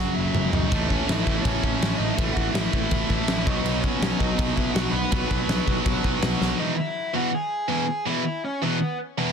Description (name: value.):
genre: punk rock.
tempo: 163 BPM.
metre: 4/4.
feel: straight.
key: B mixolydian.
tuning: A4 = 440 Hz.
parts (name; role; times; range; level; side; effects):
crunchy overdriven guitar; melody; 0.0-9.0 s; B3 to B5; -30 LUFS; left 1 dB; ping-pong delay.
tight distorted guitar; riff; 0.0-9.3 s; E2 to B3; -25 LUFS; equal; distortion.
fuzz picked electric bass; bass; 0.0-6.5 s; F#1 to B1; -29 LUFS; equal; overdrive.
big rock drum kit; drums; 0.3-6.5 s; crash cymbal, kick drum, snare drum, toms; -25 LUFS; equal; none.
room: little or no reverb.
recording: dense, heavily limited modern master.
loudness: -21 LUFS.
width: side -6 dB against mid.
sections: 0.0-6.6 A section; 6.6-9.3 B section.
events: drum fill 0.0-0.7, 6.4; half time 6.6-9.3.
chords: 0.0 F#5; 0.7 A; 3.5 B; 6.6 E.